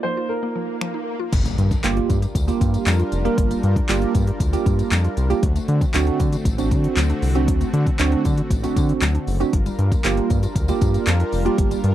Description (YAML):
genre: dance-pop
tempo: 117 BPM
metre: 4/4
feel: straight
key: unclear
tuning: A4 = 440 Hz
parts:
  - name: warm baby grand piano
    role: melody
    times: 0.0-0.8 s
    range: Bb4 to C5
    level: -28 LUFS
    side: equal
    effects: tape echo
  - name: bell-like tine electric piano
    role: accompaniment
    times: 0.0-11.8 s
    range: Bb3 to Bb4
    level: -23 LUFS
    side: right 8 dB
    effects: analog chorus, sidechain pumping
  - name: mallet-like synth pluck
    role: arpeggios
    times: 0.0-11.8 s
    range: F3 to G4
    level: -32 LUFS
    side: left 5 dB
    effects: chorus, sidechain pumping, tape echo
  - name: swell and impact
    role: sound effects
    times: 0.0-3.4 s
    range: none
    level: -30 LUFS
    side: left 1 dB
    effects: none
  - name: deep house drum kit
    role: drums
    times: 0.8-11.9 s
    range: crash cymbal, finger snaps, handclaps, hi-hat, kick drum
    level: -22 LUFS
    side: equal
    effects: none
  - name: soft supersaw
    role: sustained chords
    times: 1.3-11.9 s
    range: D3 to Bb4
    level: -28 LUFS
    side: left 1 dB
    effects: sidechain pumping
  - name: round analog bass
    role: bass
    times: 1.3-11.9 s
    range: F1 to D3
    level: -20 LUFS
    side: equal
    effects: sidechain pumping
  - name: tambourine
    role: percussion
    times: 1.5-11.8 s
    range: none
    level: -41 LUFS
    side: left 9 dB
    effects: none
room: little or no reverb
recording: dry, close 1970s-style studio recording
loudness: -18 LUFS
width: side -12 dB against mid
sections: 0.0-1.3 A section; 1.3-11.9 B section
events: swell 0.0-1.3; impact 1.3-3.4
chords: 0.0 F7sus4; 1.3 Gm7; 5.4 D7; 9.5 Gm7